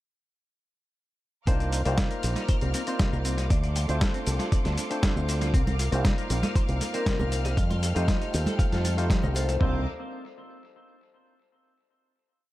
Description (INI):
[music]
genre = nu-disco, nu disco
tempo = 118 BPM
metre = 4/4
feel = straight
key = C dorian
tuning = A4 = 440 Hz
[part]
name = barky tine electric piano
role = accompaniment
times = 1.5-9.8 s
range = A3 to D5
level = -34 LUFS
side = equal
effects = medium stereo tremolo, tape echo
[part]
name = clear studio string section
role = sustained chords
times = 1.5-9.8 s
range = A4 to F6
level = -38 LUFS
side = equal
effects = vintage 12-bit sampler grit, sidechain pumping
[part]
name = twelve-string electric guitar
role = riff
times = 1.5-9.8 s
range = C3 to F5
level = -37 LUFS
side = left 3 dB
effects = wide subtle chorus, vintage 12-bit sampler grit, tape echo
[part]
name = fingered electric bass with an envelope filter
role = bass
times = 1.5-9.8 s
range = Bb1 to F2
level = -27 LUFS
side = equal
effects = none
[part]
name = dusty soul sampler-style drum kit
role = drums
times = 1.5-9.7 s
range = kick drum, toms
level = -25 LUFS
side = equal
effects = overdrive
[part]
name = dusty soul sampler-style drum kit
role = drums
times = 1.5-9.6 s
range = cabasa, hi-hat, snare drum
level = -33 LUFS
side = equal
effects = overdrive, tape echo
[part]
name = congas and bongos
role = percussion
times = 5.7-9.5 s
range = none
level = -35 LUFS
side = right 2 dB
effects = none
[part]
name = vibraphone with soft mallets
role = melody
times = 6.9-9.6 s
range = Bb4 to Eb5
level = -36 LUFS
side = left 3 dB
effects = tape echo
[sound]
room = light reverb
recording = echo-heavy mix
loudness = -23 LUFS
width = side -16 dB against mid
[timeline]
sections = 1.5-9.6 drop; 9.6-11.6 final chord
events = drop 1.5-9.6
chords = 1.5 Cm11; 3.5 Dm7; 5.5 Cm11; 7.6 F9; 9.6 Cm11